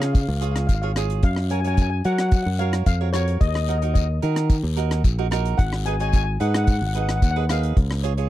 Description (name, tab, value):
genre	calypso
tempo	110 BPM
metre	4/4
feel	straight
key	F# major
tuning	A4 = 440 Hz
part	steel pan	melody	0.0-8.3 s	C#5 to G#5	-28 LUFS	left 6 dB	none
part	cavaquinho	accompaniment	0.0-8.3 s	D#4 to C#5	-29 LUFS	right 18 dB	none
part	modern bright fingered electric bass	bass	0.0-8.3 s	G#1 to F#3	-22 LUFS	equal	none
part	deep reggae drum kit	drums	0.0-8.3 s	hi-hat, kick drum, rim click	-20 LUFS	equal	none
part	guiro	percussion	0.2-8.2 s	none	-38 LUFS	left 21 dB	none
room	little or no reverb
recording	dry, close 1970s-style studio recording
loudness	-19 LUFS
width	side -14 dB against mid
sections	0.0-8.3 A section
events	none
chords	0.0 C#; 1.2 F#maj7; 3.4 D#m; 5.6 G#m; 7.8 C#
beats	0.14 0.69 | 1.23 1.77 2.32 2.86 | 3.41 3.95 4.50 5.04 | 5.59 6.13 6.68 7.22 | 7.77